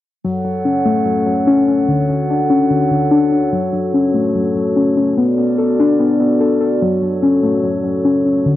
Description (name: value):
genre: hip hop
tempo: 146 BPM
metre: 4/4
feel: half-time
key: F# minor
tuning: A4 = 441 Hz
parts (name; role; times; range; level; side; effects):
- glass harmonica; sustained chords; 0.2-8.6 s; B3 to F#5; -19 LUFS; right 1 dB; cassette tape
- muted felt-like synth keys; arpeggios; 0.2-8.6 s; D3 to A4; -14 LUFS; left 2 dB; chorus, cassette tape, analog delay
room: moderate lush hall reverb, RT60 2.7 s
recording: home recording on cassette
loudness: -13 LUFS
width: side -14 dB against mid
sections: 0.2-8.6 A section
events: none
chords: 0.2 F#m; 1.9 Dmaj7; 3.5 F#m; 5.2 Bm7; 6.8 F#m